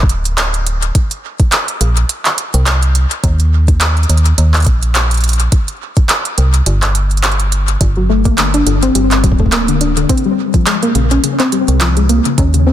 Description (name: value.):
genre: IDM.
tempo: 105 BPM.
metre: 4/4.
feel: swing 56% on 16ths.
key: unclear.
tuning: A4 = 440 Hz.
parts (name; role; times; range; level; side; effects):
metallic FM bass; bass; 0.0-12.7 s; D1 to Eb2; -12 LUFS; equal; none.
electronic kick drum; drums; 0.0-12.5 s; none; -12 LUFS; equal; overdrive.
organic electronic drum kit; drums; 0.1-12.6 s; handclaps, hi-hat; -16 LUFS; right 1 dB; overdrive, ping-pong delay.
soft round pluck; arpeggios; 8.0-12.7 s; Db3 to D4; -13 LUFS; left 3 dB; chorus, digital delay.
room: light reverb.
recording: dense, heavily limited modern master.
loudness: -10 LUFS.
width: side -11 dB against mid.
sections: 0.0-12.7 A section.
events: none.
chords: 0.0 N.C.; 1.0 Bbsus2; 3.2 Eb5; 5.5 N.C.; 7.8 Gm; 10.1 Bbm7.